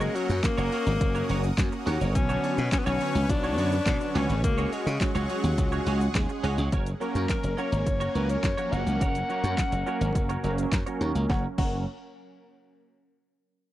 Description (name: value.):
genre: dance-pop.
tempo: 105 BPM.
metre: 4/4.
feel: straight.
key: F# major.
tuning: A4 = 440 Hz.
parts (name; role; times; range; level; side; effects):
clear alto saxophone; melody; 0.0-11.8 s; F#3 to F#5; -31 LUFS; left 3 dB; low-pass filter, tape echo.
big bright polysynth; accompaniment; 0.0-11.8 s; D3 to C#5; -33 LUFS; right 2 dB; sidechain pumping, low-pass filter.
supersaw pad; sustained chords; 0.0-11.6 s; F#3 to D#6; -38 LUFS; right 1 dB; sidechain pumping, low-pass filter.
direct-recorded clean electric guitar; riff; 0.0-11.8 s; B3 to C#5; -35 LUFS; right 4 dB; ensemble chorus, low-pass filter.
glassy slap bass; bass; 0.0-11.8 s; F#1 to C#3; -27 LUFS; equal; sidechain pumping.
deep house drum kit; drums; 0.0-11.7 s; crash cymbal, handclaps, hi-hat, kick drum, shaker, snare drum; -28 LUFS; equal; none.
room: little or no reverb.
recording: dry, close 1970s-style studio recording.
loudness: -24 LUFS.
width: side -14 dB against mid.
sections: 0.0-6.7 A section; 6.7-11.3 B section; 11.3-13.6 C section.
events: filter sweep 6.7-11.3.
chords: 0.0 F#; 2.2 Bmadd9; 4.4 C#sus4; 6.7 F#.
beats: 0.44 1.01 1.58 | 2.15 2.72 3.29 3.87 | 4.44 5.01 5.58 6.15 | 6.72 7.29 7.87 8.44 | 9.01 9.58 10.15 10.72 | 11.29.